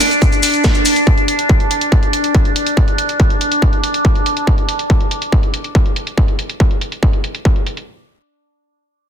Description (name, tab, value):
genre	psychedelic trance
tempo	141 BPM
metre	4/4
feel	straight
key	unclear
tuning	A4 = 438 Hz
part	overtone-sweeping drone	sustained chords	0.0-4.5 s	D4	-17 LUFS	right 1 dB	chorus, built-in reverb, phaser, sidechain pumping
part	techno drum kit	drums	0.0-7.9 s	hi-hat, snare drum	-22 LUFS	equal	low-pass filter on hats, low-pass filter on snare, low-pass filter on room
part	maracas	percussion	0.0-1.0 s	none	-20 LUFS	left 5 dB	none
part	electronic kick drum	drums	0.2-7.5 s	none	-14 LUFS	equal	distortion
room	little or no reverb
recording	dense, heavily limited modern master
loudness	-12 LUFS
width	side -8 dB against mid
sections	0.0-7.9 A section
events	none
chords	none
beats	0.22 0.64 | 1.07 1.49 1.92 2.35 | 2.77 3.20 3.62 4.05 | 4.47 4.90 5.32 5.75 | 6.17 6.60 7.03 7.45